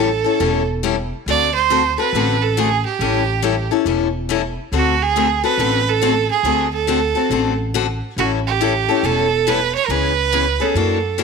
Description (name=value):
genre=acoustic string swing (jazz manouche)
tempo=139 BPM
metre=4/4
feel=swing 62% on 8ths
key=A major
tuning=A4 = 440 Hz
part: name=bright violin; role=melody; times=0.0-11.2 s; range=F#4 to D5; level=-18 LUFS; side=right 10 dB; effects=none
part: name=picked steel-string acoustic guitar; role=accompaniment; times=0.0-11.2 s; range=C#3 to A4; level=-20 LUFS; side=left 11 dB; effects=none
part: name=upright bass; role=bass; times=0.0-11.2 s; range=E1 to F#2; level=-23 LUFS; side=equal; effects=none
room=moderate echo chamber reverb, RT60 1.3 s, small room reverb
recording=1960s-style stereo with parts hard left and right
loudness=-15 LUFS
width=side -5 dB against mid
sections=0.0-11.2 A section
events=none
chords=0.0 A7; 1.3 D7; 3.0 A7; 4.7 D7; 8.2 A7; 9.9 C#m7